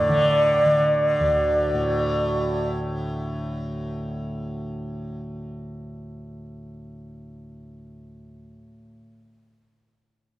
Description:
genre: indian classical.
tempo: 126 BPM.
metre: 5/4.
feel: straight.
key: unclear.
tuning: A4 = 443 Hz.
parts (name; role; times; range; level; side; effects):
bansuri; melody; 0.0-2.7 s; D5; -20 LUFS; equal; none.
tanpura; drone; 0.0-8.9 s; D2 to D3; -28 LUFS; equal; none.
room: moderate recital hall reverb, RT60 1.8 s.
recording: worn, warbling old tape, cassette tape, warbly pitch drift.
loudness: -21 LUFS.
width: side -16 dB against mid.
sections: 0.0-1.9 A section.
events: none.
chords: none.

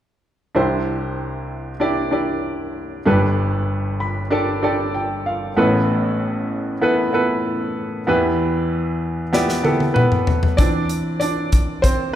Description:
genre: piano-driven pop.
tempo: 96 BPM.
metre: 4/4.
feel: straight.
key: C major.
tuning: A4 = 440 Hz.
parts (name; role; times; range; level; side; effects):
clear baby grand piano; accompaniment; 0.5-12.2 s; G1 to B5; -18 LUFS; equal; none.
modern studio drum kit; drums; 9.3-12.0 s; hi-hat, kick drum, snare drum, toms; -18 LUFS; left 1 dB; none.
room: wet recital hall reverb, RT60 1.9 s.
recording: recorded in a church or concert hall.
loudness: -17 LUFS.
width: side -11 dB against mid.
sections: 0.6-10.6 A section; 10.6-12.2 B section.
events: grand piano fill 3.7-5.6; drum fill 9.3-10.6; grand piano solo 10.6-12.2.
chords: 0.6 Cadd9; 3.1 Gadd9; 5.6 Asus2; 8.1 Em; 10.6 Cadd9.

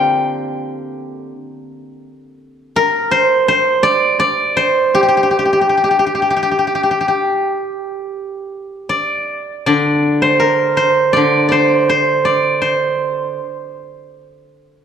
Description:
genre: chinese traditional, Chinese solo plucked strings.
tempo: 73-84 BPM.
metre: 4/4.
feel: rubato.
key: unclear.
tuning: A4 = 440 Hz.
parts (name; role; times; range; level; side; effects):
steel-string zither; solo; 0.0-14.6 s; D3 to G5; -13 LUFS; equal; none.
room: moderate scoring stage reverb, RT60 1.9 s.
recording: lossy compression artefacts.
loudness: -12 LUFS.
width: side -8 dB against mid.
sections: 0.0-8.1 A section; 8.1-14.8 B section.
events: none.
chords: none.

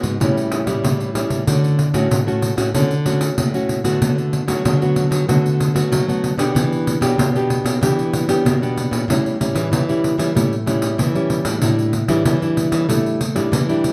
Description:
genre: samba and choro.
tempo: 95 BPM.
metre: 4/4.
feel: straight.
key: D major.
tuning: A4 = 440 Hz.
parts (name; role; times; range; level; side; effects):
nylon-string guitar; accompaniment; 0.0-13.9 s; A2 to G4; -22 LUFS; equal; none.
nylon-string guitar; bass; 0.0-13.9 s; G#2 to A3; -24 LUFS; equal; none.
pandeiro; percussion; 0.0-13.9 s; none; -23 LUFS; equal; none.
room: moderate studio reverb, RT60 0.7 s.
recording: band playing live in one room.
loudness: -18 LUFS.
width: mono.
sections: 0.0-1.5 A section; 1.5-13.9 B section.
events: none.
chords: 0.2 A7; 1.5 Dmaj7; 4.0 Bm7/D; 6.6 Em7; 9.1 A7; 11.6 A7sus4.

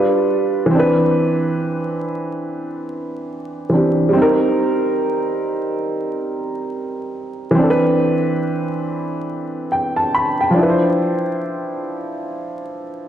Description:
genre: hip hop.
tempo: 70 BPM.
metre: 4/4.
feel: swing 58% on 16ths.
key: unclear.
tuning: A4 = 440 Hz.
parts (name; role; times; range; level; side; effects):
dark upright piano; solo; 0.0-13.1 s; E3 to B5; -17 LUFS; right 1 dB; low-pass filter.
room: wet lush hall reverb, RT60 2.1 s.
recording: dreamy mix soaked in reverb, vinyl crackle.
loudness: -16 LUFS.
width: side -10 dB against mid.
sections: 0.0-4.1 A section; 4.1-13.1 B section.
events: none.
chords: 0.0 G7; 0.7 Cmaj9/E; 4.1 Eb6; 7.6 Cmaj9/E; 10.6 Dm9.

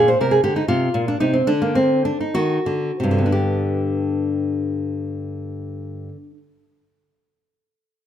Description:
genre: classical, baroque-style dance for nylon-string guitar.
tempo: 59-83 BPM (dotted quarters).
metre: 6/8.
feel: rubato.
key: unclear.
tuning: A4 = 440 Hz.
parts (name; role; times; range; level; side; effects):
nylon-string guitar; solo; 0.0-6.4 s; G2 to C5; -18 LUFS; equal; none.
room: moderate recital hall reverb, RT60 1.3 s.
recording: none.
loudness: -18 LUFS.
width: side -10 dB against mid.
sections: 0.0-3.3 A section; 3.3-7.3 B section.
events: slowing down 0.0-3.3.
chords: 0.0 Bb; 0.7 Bbadd9; 1.5 D7; 3.3 G.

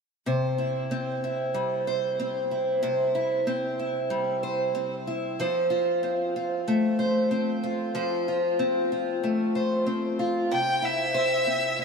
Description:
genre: pop.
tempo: 94 BPM.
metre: 4/4.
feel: straight.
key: C major.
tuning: A4 = 439 Hz.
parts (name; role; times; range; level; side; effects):
picked acoustic archtop guitar; accompaniment; 0.3-11.8 s; C3 to C5; -24 LUFS; equal; wide subtle chorus.
warm violin; melody; 10.5-11.8 s; E5 to G5; -24 LUFS; left 1 dB; analog delay.
room: wet huge ambient reverb, RT60 4.3 s.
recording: dreamy mix soaked in reverb.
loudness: -24 LUFS.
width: side -5 dB against mid.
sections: 0.3-10.5 A section; 10.5-11.8 B section.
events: none.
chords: 0.3 C; 5.4 F; 10.5 C.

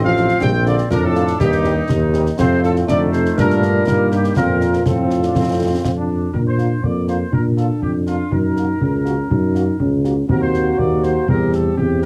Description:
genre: military-style march for wind band.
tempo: 122 BPM.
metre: 2/4.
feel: straight.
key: Bb major.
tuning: A4 = 443 Hz.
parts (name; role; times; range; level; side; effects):
mellow trumpet section; melody; 0.0-12.1 s; F4 to G5; -29 LUFS; equal; none.
dark euphonium; second line; 0.0-12.1 s; G2 to Eb4; -24 LUFS; equal; none.
mellow hollow small flute group; second line; 0.0-5.8 s; G4 to G5; -28 LUFS; equal; none.
bright trombone section; sustained chords; 0.0-6.3 s; A3 to Eb4; -27 LUFS; equal; none.
warm tuba; bass; 0.0-12.1 s; A1 to Bb2; -21 LUFS; equal; none.
mellow French horn section; accompaniment; 0.2-12.1 s; F3 to G4; -25 LUFS; equal; none.
concert snare drum, concert bass drum and clash cymbals; drums; 0.2-12.1 s; none; -26 LUFS; equal; none.
room: moderate small room reverb, RT60 0.5 s.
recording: heavily compressed radio sound.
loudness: -17 LUFS.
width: mono.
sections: 0.0-6.3 A section; 6.3-12.1 B section.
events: none.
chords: 0.4 Bb; 1.4 Cm/Eb; 2.4 F; 3.4 Gm; 4.4 F; 6.3 Bb; 8.3 Gb; 10.3 Cm7b5/Eb; 11.3 C/E.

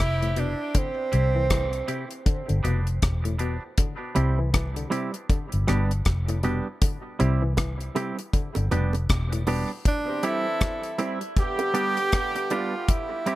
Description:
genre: dub reggae.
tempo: 79 BPM.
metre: 4/4.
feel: swing 60% on 16ths.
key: C major.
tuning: A4 = 440 Hz.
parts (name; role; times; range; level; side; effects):
breathy tenor saxophone; melody; 0.0-2.3, 9.9-13.4 s; C4 to G4; -28 LUFS; right 2 dB; dub echo.
mellow horn section; second line; 0.0-0.6, 10.1-12.7 s; D3 to A4; -34 LUFS; left 2 dB; high-pass filter, dub echo.
vintage muted fingered electric bass; bass; 0.0-9.6 s; E1 to C2; -24 LUFS; equal; none.
deep reggae drum kit; drums; 0.0-13.4 s; hi-hat, kick drum, rim click; -25 LUFS; equal; none.
semi-hollow electric guitar; accompaniment; 0.2-13.4 s; G3 to G4; -30 LUFS; right 3 dB; high-pass filter, dub echo.
muted clav; arpeggios; 0.2-9.6 s; A2 to E3; -34 LUFS; left 4 dB; dub echo.
bongos; percussion; 0.4-0.6, 7.6-12.7 s; none; -36 LUFS; right 5 dB; none.
room: light reverb.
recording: none.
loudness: -23 LUFS.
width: side -16 dB against mid.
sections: 0.0-13.4 A section.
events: filter sweep 0.0-3.8; part muted 0.7-6.8.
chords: 0.0 G; 0.7 C; 2.3 G; 3.8 C; 5.3 G; 6.8 C; 8.3 G; 9.9 C; 11.4 G.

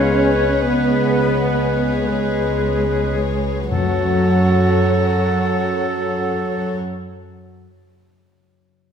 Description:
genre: classical, slow romantic movement for symphony orchestra.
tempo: 35-47 BPM.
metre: 4/4.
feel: rubato.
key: F# minor.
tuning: A4 = 438 Hz.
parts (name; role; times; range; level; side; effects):
dark chamber violin section; melody; 0.0-6.8 s; C#5; -27 LUFS; left 6 dB; none.
bright clarinet; second line; 0.0-6.8 s; F#4 to C#5; -28 LUFS; equal; none.
bright silver concert flute; second line; 0.0-6.8 s; G#4 to F#5; -28 LUFS; left 2 dB; none.
dark chamber violin section; second line; 0.0-6.8 s; F#4 to B4; -30 LUFS; left 4 dB; none.
warm oboe; second line; 0.0-6.7 s; A4 to B4; -27 LUFS; right 2 dB; none.
dark studio viola section; accompaniment; 0.0-6.8 s; F#3 to C#4; -26 LUFS; equal; none.
mellow bassoon; accompaniment; 0.0-6.8 s; F#3 to G#3; -26 LUFS; right 2 dB; none.
mellow French horn section; sustained chords; 0.0-6.8 s; B3 to A4; -26 LUFS; left 3 dB; none.
concert harp; arpeggios; 0.0-7.6 s; F#2 to C#5; -28 LUFS; left 5 dB; none.
warm studio cello section; bass; 0.0-6.8 s; F#3 to C#4; -24 LUFS; right 2 dB; none.
warm studio double bass section; bass; 0.0-6.8 s; C#2 to F#2; -23 LUFS; right 3 dB; none.
timpani; percussion; 3.7-6.8 s; F#2; -26 LUFS; left 2 dB; none.
room: wet scoring stage reverb, RT60 1.8 s.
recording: none.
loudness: -16 LUFS.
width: side -7 dB against mid.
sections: 0.0-3.7 A section; 3.7-8.9 B section.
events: slowing down 0.0-3.7.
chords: 0.0 C#7(no3); 3.7 F#m.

